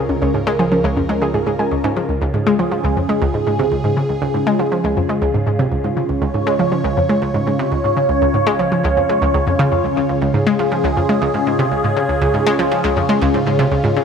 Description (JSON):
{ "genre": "ambient, sequencer-driven space music", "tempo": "120 BPM", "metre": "4/4", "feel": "straight", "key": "Db major", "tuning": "A4 = 440 Hz", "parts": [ { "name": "phased analog pad", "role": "sustained chords", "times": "0.0-14.0 s", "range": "Db3 to Db5", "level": "-17 LUFS", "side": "equal", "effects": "phaser, chorus" }, { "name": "warbly dusty pluck", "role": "arpeggios", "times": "0.0-14.0 s", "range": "Db4 to Ab5", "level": "-29 LUFS", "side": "left 1 dB", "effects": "none" }, { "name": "analog pluck", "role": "riff", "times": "0.0-14.0 s", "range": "Db2 to Ab3", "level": "-18 LUFS", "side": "equal", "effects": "chorus, ping-pong delay" }, { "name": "fat analog bass", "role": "bass", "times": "0.0-2.1 s", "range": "Db2", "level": "-31 LUFS", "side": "equal", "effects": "none" } ], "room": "moderate plate reverb, RT60 2.4 s", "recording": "none", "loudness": "-14 LUFS", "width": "side -6 dB against mid", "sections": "0.0-2.1 A section; 2.1-14.0 B section", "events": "none", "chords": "0.0 Db" }